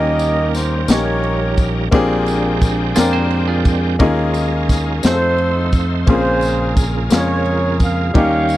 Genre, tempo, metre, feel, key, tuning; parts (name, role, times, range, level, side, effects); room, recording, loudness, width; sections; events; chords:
slow gospel; 58 BPM (dotted quarters); 6/8; straight; A4 = 439 Hz
mellow horn section; melody; 0.0-1.9, 5.1-8.6 s; Eb4 to F5; -20 LUFS; right 2 dB
warm grand piano; accompaniment; 0.0-8.6 s; Bb2 to G5; -19 LUFS; left 3 dB
bright tonewheel organ; sustained chords; 0.0-8.6 s; Db3 to G5; -24 LUFS; right 3 dB; slow rotary speaker, chorus vibrato
modern bright fingered electric bass; bass; 0.0-8.6 s; Bb1 to F2; -19 LUFS; equal
crisp fusion drum kit; drums; 0.2-8.6 s; kick drum, ride cymbal, snare drum; -15 LUFS; equal
tambourine; percussion; 0.2-8.6 s; -30 LUFS; left 4 dB
semi-hollow electric guitar; second line; 3.0-4.0 s; F4 to C5; -24 LUFS; right 7 dB
little or no reverb; dry, close 1970s-style studio recording; -14 LUFS; side -15 dB against mid
0.0-8.6 A section
0.0 Eb7; 1.9 Bb13; 4.0 Eb9sus4; 5.0 F7; 6.1 Bbm9